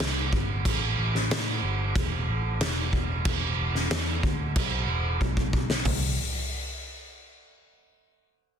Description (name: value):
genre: quiet-loud alternative rock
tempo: 92 BPM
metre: 4/4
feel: straight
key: unclear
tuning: A4 = 442 Hz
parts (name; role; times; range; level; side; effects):
- picked electric bass; bass; 0.0-6.2 s; E1 to A2; -29 LUFS; equal; none
- loose indie drum kit; drums; 0.0-6.0 s; crash cymbal, hi-hat, kick drum, snare drum, toms; -26 LUFS; equal; none
room: little or no reverb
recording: dense, heavily limited modern master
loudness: -24 LUFS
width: side -8 dB against mid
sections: 0.0-5.9 A section; 5.9-8.5 B section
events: drum fill 5.2-5.9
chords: none